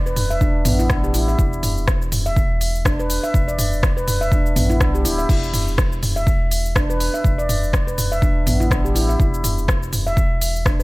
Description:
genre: afro house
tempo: 123 BPM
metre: 4/4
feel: swing 57% on 16ths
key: unclear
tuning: A4 = 445 Hz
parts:
  - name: round analog bass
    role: bass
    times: 0.0-10.8 s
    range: D1 to B1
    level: -23 LUFS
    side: equal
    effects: sidechain pumping
  - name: handpan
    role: arpeggios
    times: 0.1-10.8 s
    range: B3 to E5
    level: -23 LUFS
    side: equal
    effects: sidechain pumping, digital delay
  - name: deep house drum kit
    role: drums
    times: 0.1-10.8 s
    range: crash cymbal, hi-hat, rim click, shaker, toms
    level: -23 LUFS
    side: equal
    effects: none
  - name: electronic kick drum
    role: drums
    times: 0.4-10.8 s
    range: none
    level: -20 LUFS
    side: equal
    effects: overdrive
room: digital ambience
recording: none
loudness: -16 LUFS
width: side -22 dB against mid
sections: 0.0-10.8 A section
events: none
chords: 0.0 Gadd9/E (rootless); 5.3 N.C.

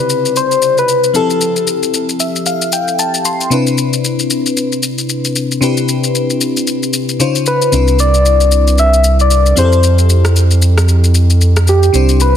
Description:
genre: amapiano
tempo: 114 BPM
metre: 4/4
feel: swing 58% on 16ths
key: C major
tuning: A4 = 440 Hz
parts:
  - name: soft struck synth lead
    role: melody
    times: 0.0-1.7, 7.5-12.4 s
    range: G4 to E5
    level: -14 LUFS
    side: left 2 dB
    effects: chorus, ping-pong delay
  - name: crystalline FM electric piano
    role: accompaniment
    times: 0.0-12.4 s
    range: C3 to C6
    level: -16 LUFS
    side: left 2 dB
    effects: chorus
  - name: electronic shaker and rim click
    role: drums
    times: 0.1-12.3 s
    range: none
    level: -19 LUFS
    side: left 4 dB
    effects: overdrive
  - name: saturated sub bass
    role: bass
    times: 7.7-12.4 s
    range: C2 to F2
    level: -10 LUFS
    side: right 1 dB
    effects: none
room: light reverb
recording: dense, heavily limited modern master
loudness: -10 LUFS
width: side -9 dB against mid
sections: 0.0-12.4 A section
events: FM electric piano fill 1.9-3.5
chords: 0.0 Cmaj9; 1.1 Fmaj9; 3.5 Cmaj9; 7.2 Dbmaj9; 7.7 Cmaj9; 9.6 Fmaj9

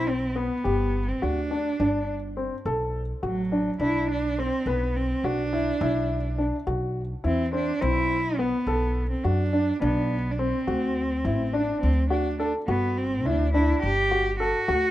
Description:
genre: contemporary instrumental, chamber music in an uneven meter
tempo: 210 BPM (eighths)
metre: 7/8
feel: straight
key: unclear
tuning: A4 = 440 Hz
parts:
  - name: warm cello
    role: melody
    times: 0.0-14.9 s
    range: F#3 to G4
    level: -27 LUFS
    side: right 2 dB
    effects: none
  - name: dark concert grand piano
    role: arpeggios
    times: 0.0-14.9 s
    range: B3 to B4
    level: -28 LUFS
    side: left 2 dB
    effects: none
  - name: upright bass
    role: bass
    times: 0.0-14.9 s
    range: G1 to F#2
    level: -28 LUFS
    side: equal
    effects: none
room: light reverb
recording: dark, warm production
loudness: -23 LUFS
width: side -14 dB against mid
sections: 0.0-10.7 A section; 10.7-14.9 B section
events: none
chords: 0.0 Cmaj7(no3)/B; 0.7 G5; 2.7 D; 4.7 E5/B; 6.7 D13/B (rootless); 8.7 Bm7; 10.7 D7; 12.7 G5

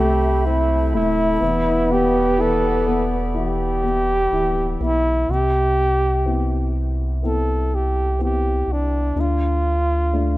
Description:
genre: pop ballad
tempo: 62 BPM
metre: 4/4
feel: straight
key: C major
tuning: A4 = 435 Hz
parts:
  - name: breathy flugelhorn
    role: melody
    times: 0.0-10.4 s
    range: D4 to A4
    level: -21 LUFS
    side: equal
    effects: none
  - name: dark French horn section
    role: second line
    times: 0.0-4.8 s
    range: A3 to B3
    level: -23 LUFS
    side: right 1 dB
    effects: none
  - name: dark upright piano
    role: accompaniment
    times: 0.0-10.4 s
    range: C3 to F4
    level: -26 LUFS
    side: left 3 dB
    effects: none
  - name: warm woodwind section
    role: sustained chords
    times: 0.0-5.2 s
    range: G4 to B5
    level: -33 LUFS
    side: equal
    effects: none
  - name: warm sub bass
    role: bass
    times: 0.0-10.4 s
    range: D1 to D2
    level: -22 LUFS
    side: equal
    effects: none
room: light reverb, small room ambience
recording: rough home demo mix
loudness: -17 LUFS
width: side -17 dB against mid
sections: 0.0-5.3 A section; 5.3-10.4 B section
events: none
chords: 0.0 Amadd9/C; 1.4 Em7; 5.3 Cmaj7; 9.2 Dm

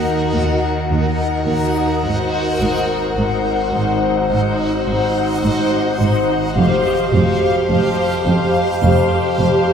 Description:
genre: cinematic, suspense film score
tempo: 53 BPM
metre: 4/4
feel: straight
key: unclear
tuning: A4 = 441 Hz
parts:
  - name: muted studio violin section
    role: melody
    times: 0.0-9.7 s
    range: F5 to Gb5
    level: -23 LUFS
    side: left 3 dB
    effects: none
  - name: muted chamber violin section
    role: second line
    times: 0.0-9.7 s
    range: Bb4 to C5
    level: -22 LUFS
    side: left 4 dB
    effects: none
  - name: muted chamber viola section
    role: accompaniment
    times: 0.0-9.7 s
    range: Eb4 to G4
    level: -22 LUFS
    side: right 2 dB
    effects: none
  - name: backwards swelling texture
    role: sustained chords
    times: 0.0-9.7 s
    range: Gb4 to F5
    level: -23 LUFS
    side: left 1 dB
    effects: built-in reverb
  - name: overtone-sweeping drone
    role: drone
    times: 0.0-9.7 s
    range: Ab1 to F2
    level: -23 LUFS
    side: right 1 dB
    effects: chorus, built-in reverb
  - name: muted chamber cello section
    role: bass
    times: 0.3-9.5 s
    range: Eb2 to Ab2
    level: -22 LUFS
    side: right 2 dB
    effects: none
  - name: muted chamber double bass section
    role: bass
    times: 0.3-9.5 s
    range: F1 to Eb2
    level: -23 LUFS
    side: right 2 dB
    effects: none
room: wet scoring stage reverb, RT60 1.6 s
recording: heard from further back in the room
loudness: -14 LUFS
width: side -7 dB against mid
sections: 0.0-9.7 A section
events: none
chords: 0.0 Ebm; 2.0 Ab7; 6.6 Fsus2

